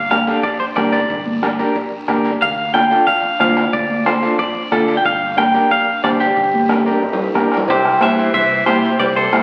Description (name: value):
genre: latin, cumbia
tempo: 182 BPM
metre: 4/4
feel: straight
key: G dorian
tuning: A4 = 440 Hz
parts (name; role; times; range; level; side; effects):
- clean electric guitar; melody; 0.0-9.4 s; G4 to G5; -19 LUFS; equal; spring reverb
- fingered electric bass; bass; 0.0-9.4 s; G1 to G2; -34 LUFS; equal; none
- combo organ; accompaniment; 0.1-9.4 s; D4 to C5; -23 LUFS; equal; none
- bombo; percussion; 0.1-9.4 s; none; -26 LUFS; equal; none
- congas; percussion; 0.1-9.4 s; none; -25 LUFS; equal; none
- guiro; percussion; 0.1-9.4 s; none; -38 LUFS; equal; none
- timbales and cowbell; percussion; 0.1-9.4 s; none; -30 LUFS; equal; none
- raspy tenor saxophone; second line; 7.7-9.4 s; C3 to G3; -26 LUFS; equal; none
room: wet large studio reverb, RT60 1.4 s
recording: very old 78 rpm record, vinyl crackle, nothing above 10.8 kHz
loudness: -16 LUFS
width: mono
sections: 0.0-7.7 A section; 7.7-9.4 B section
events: drum fill 6.7-7.7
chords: 0.0 Gm; 2.4 Dm; 5.0 Gm; 7.7 C